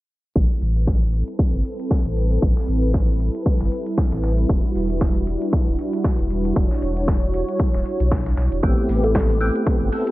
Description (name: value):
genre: deep house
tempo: 116 BPM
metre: 4/4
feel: swing 57% on 16ths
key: A dorian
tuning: A4 = 439 Hz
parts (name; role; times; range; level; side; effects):
- warm analog pad; sustained chords; 0.4-10.1 s; G3 to C#5; -25 LUFS; equal; chorus, sidechain pumping
- warm sub bass; bass; 0.4-9.9 s; D1 to B1; -21 LUFS; equal; sidechain pumping
- dusty soul sampler-style drum kit; drums; 0.4-10.1 s; hi-hat, snare drum; -40 LUFS; equal; sidechain pumping on hats, high-pass filter on hats, high-pass filter on snare
- electronic kick drum; drums; 0.4-9.8 s; none; -20 LUFS; equal; overdrive
- punchy analog drum machine; drums; 0.4-10.1 s; hi-hat, snare drum; -29 LUFS; equal; none
- percussive tonewheel organ; stabs; 8.6-10.1 s; A3 to A4; -23 LUFS; right 1 dB; chorus vibrato, slow rotary speaker
- kalimba; melody; 9.0-9.2 s; A4; -24 LUFS; left 1 dB; analog delay
room: light reverb, digital ambience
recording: cassette tape, low-pass filter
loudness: -18 LUFS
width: side -18 dB against mid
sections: 0.4-10.1 A section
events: filter sweep on sub bass 0.4-10.1; filter sweep 0.4-10.1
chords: 0.4 Am9; 4.5 Em9; 8.6 Am9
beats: | 0.36 0.87 1.39 1.91 | 2.42 2.94 3.46 3.98 | 4.49 5.01 5.53 6.05 | 6.56 7.08 7.60 8.12 | 8.63 9.15 9.67